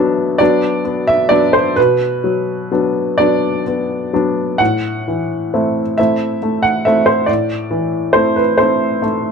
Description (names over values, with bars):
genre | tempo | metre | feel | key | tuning
neoclassical minimalist piano | 42-47 BPM (dotted quarters) | 6/8 | rubato | A dorian | A4 = 440 Hz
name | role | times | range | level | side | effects
clear upright piano | solo | 0.0-9.3 s | A2 to F#5 | -13 LUFS | equal | none
room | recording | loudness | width
light reverb | dark, warm production | -13 LUFS | side -6 dB against mid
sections
0.0-9.3 A section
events
none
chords
0.0 Bm; 4.6 Am